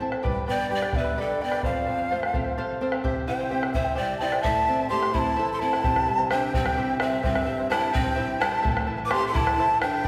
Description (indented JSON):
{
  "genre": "andean folk, Andean ensemble",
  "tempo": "86 BPM (dotted quarters)",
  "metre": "6/8",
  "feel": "straight",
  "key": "unclear",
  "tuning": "A4 = 440 Hz",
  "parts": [
    { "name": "charango", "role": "accompaniment", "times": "0.0-10.1 s", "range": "E4 to B5", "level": "-34 LUFS", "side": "equal", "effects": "none" },
    { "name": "flamenco guitar", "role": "accompaniment", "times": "0.0-10.1 s", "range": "F2 to F5", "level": "-34 LUFS", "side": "equal", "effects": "none" },
    { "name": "bombo", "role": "percussion", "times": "0.1-10.1 s", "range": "none", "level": "-31 LUFS", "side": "equal", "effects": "none" },
    { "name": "bright reedy large quena", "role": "melody", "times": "0.5-10.1 s", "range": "D5 to D6", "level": "-28 LUFS", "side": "equal", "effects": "none" },
    { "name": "breathy bright large pan pipes", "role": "second line", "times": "0.5-10.1 s", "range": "C4 to E5", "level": "-34 LUFS", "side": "equal", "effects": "none" }
  ],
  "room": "wet scoring stage reverb, RT60 1.7 s",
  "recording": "recorded in a church or concert hall",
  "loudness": "-25 LUFS",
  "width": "mono",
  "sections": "0.0-5.8 A section; 5.8-10.1 B section",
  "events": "nylon-string guitar fill 2.3-3.0, 5.1-5.8",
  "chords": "0.2 G; 1.6 F; 3.0 C; 4.4 Am; 5.8 C; 8.6 Am"
}